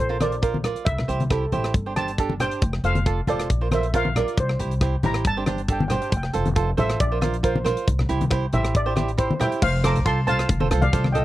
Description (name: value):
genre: calypso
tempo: 137 BPM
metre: 4/4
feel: straight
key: unclear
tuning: A4 = 440 Hz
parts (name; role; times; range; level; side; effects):
- steel pan; melody; 0.0-11.2 s; A4 to D6; -28 LUFS; left 1 dB; none
- upright bass; bass; 0.0-11.2 s; E1 to C2; -25 LUFS; equal; none
- cavaquinho; accompaniment; 0.1-11.2 s; D4 to Eb5; -26 LUFS; right 6 dB; none
- tight metal drum kit; drums; 0.2-11.2 s; crash cymbal, hi-hat, kick drum, rim click; -24 LUFS; equal; none
- congas; percussion; 0.2-11.2 s; none; -26 LUFS; left 2 dB; none
room: little or no reverb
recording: dry, close 1970s-style studio recording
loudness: -20 LUFS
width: side -15 dB against mid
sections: 0.0-9.6 A section; 9.6-11.2 B section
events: steel pan solo 0.0-9.6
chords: 0.0 Bbsus2; 0.9 C; 1.7 Gsus4; 2.6 Fmaj7; 3.5 Bbsus2; 4.4 C; 5.3 Gsus4; 6.1 F; 7.0 Bbsus2; 7.9 C; 9.6 F